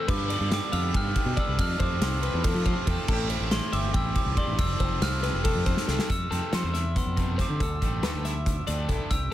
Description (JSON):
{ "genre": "math rock and midwest emo", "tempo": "280 BPM (eighths)", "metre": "7/8", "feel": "straight", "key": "F lydian", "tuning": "A4 = 445 Hz", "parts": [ { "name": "glockenspiel with soft plastic mallets", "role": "melody", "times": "0.0-9.3 s", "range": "C6 to F6", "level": "-33 LUFS", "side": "right 1 dB", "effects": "none" }, { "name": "twangy electric guitar", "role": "accompaniment", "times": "0.0-9.3 s", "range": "F2 to A4", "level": "-39 LUFS", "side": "right 4 dB", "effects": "wide subtle chorus" }, { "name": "twelve-string electric guitar", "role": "arpeggios", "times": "0.0-9.1 s", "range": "B3 to G5", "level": "-35 LUFS", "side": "left 6 dB", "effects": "spring reverb" }, { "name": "cranked stack guitar", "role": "riff", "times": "0.0-9.1 s", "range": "G2 to F4", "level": "-35 LUFS", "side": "equal", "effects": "overdrive" }, { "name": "growling fingered electric bass", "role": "bass", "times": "0.1-9.3 s", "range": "E1 to F3", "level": "-29 LUFS", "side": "equal", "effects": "overdrive" }, { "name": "loose indie drum kit", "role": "drums", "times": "0.1-9.2 s", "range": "crash cymbal, hi-hat, kick drum, ride cymbal, snare drum", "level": "-28 LUFS", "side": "equal", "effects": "none" } ], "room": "little or no reverb", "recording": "none", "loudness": "-24 LUFS", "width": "side -13 dB against mid", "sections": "0.0-6.1 A section; 6.1-9.3 B section", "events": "drum fill 5.8-6.1", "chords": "0.1 G7; 1.6 Fmaj7; 3.1 Am7; 4.6 Fmaj9; 6.1 Fmaj7; 7.6 Dm9" }